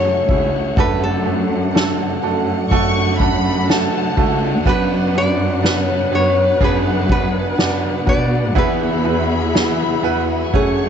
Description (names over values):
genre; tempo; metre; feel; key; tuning
pop ballad; 62 BPM; 4/4; straight; unclear; A4 = 440 Hz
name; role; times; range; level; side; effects
nylon-string guitar; melody; 0.0-10.9 s; G#4 to D5; -21 LUFS; left 2 dB; slapback echo
clear concert grand piano; accompaniment; 0.0-10.9 s; E3 to D5; -21 LUFS; right 13 dB; none
warm studio string section; sustained chords; 0.0-10.9 s; A3 to C#6; -25 LUFS; left 4 dB; none
fingerpicked plugged-in steel-string acoustic guitar; arpeggios; 0.0-10.9 s; F#2 to F#4; -28 LUFS; left 16 dB; none
dark symphonic cello section; bass; 0.0-10.9 s; C#2 to B2; -20 LUFS; equal; none
soft-mallet drum kit; drums; 0.3-10.8 s; kick drum, ride cymbal, snare drum; -21 LUFS; left 1 dB; none
warm studio violin section; second line; 2.7-4.4 s; A5 to C#6; -23 LUFS; left 2 dB; none
room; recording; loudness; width
light reverb, small room reverb; 1960s-style stereo with parts hard left and right, nothing above 7.8 kHz; -15 LUFS; side -8 dB against mid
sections
0.0-10.9 A section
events
none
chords
0.0 F#m7; 0.8 D/F#; 4.7 Bm/F#; 8.6 Eadd9